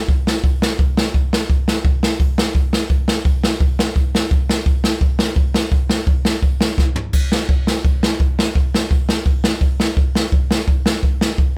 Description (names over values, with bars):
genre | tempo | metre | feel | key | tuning
punk | 170 BPM | 4/4 | straight | none | none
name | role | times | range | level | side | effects
jazz brush drum kit | drums | 0.1-11.5 s | crash cymbal, hi-hat, kick drum, snare drum, toms | -17 LUFS | equal | none
room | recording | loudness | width
light reverb | band playing live in one room | -17 LUFS | mono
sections
0.0-11.6 A section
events
drum fill 6.8-7.1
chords
none